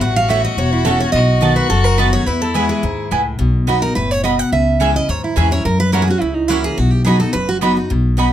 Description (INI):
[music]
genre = bluegrass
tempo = 213 BPM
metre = 4/4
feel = swing 54% on 8ths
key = unclear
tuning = A4 = 440 Hz
[part]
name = picked steel-string acoustic guitar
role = melody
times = 0.0-7.6 s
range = D#4 to F#5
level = -19 LUFS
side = right 4 dB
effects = none
[part]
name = clear fiddle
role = second line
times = 0.0-3.2 s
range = E4 to F#4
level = -22 LUFS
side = left 5 dB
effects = none
[part]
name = picked steel-string acoustic guitar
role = accompaniment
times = 0.0-8.3 s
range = E2 to F#4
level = -19 LUFS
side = left 2 dB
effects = none
[part]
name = upright bass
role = bass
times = 0.0-8.3 s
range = E1 to F#2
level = -18 LUFS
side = equal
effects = none
[part]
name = mandolin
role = stabs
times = 0.3-8.3 s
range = A3 to B5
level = -19 LUFS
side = right 4 dB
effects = none
[sound]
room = little or no reverb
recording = close, detailed microphones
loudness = -13 LUFS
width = side -11 dB against mid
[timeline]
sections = 0.0-3.4 A section; 3.4-8.3 B section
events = none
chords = 0.0 A6; 1.1 B7; 2.3 E; 3.4 B; 4.5 C#m; 5.7 F#7; 6.8 B